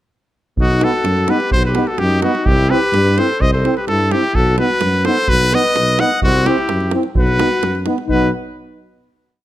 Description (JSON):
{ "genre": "balkan folk, Balkan brass band", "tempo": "128 BPM", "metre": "2/4", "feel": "straight", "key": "B phrygian dominant", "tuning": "A4 = 440 Hz", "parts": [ { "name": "brilliant trumpet", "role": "melody", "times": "0.6-8.3 s", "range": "F#4 to F#5", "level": "-18 LUFS", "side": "equal", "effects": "none" }, { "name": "warm alto saxophone", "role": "second line", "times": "0.6-8.3 s", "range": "F#3 to D#5", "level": "-22 LUFS", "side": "left 4 dB", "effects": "none" }, { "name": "mellow tuba", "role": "bass", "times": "0.6-8.3 s", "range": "B1 to G2", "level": "-18 LUFS", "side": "equal", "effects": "none" }, { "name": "davul", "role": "percussion", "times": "0.6-8.3 s", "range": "none", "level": "-21 LUFS", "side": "right 1 dB", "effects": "none" }, { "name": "clear trombone", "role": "accompaniment", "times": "0.8-8.3 s", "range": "B3 to C4", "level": "-23 LUFS", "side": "right 6 dB", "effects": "none" }, { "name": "mellow euphonium", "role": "accompaniment", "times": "0.8-8.3 s", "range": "D#4 to E4", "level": "-23 LUFS", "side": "left 5 dB", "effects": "none" } ], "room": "light reverb", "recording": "close, detailed microphones", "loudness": "-13 LUFS", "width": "side -14 dB against mid", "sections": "0.6-8.1 A section; 8.1-9.0 final chord", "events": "none", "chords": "0.6 B; 2.5 C; 4.3 B; 6.2 C; 7.2 B" }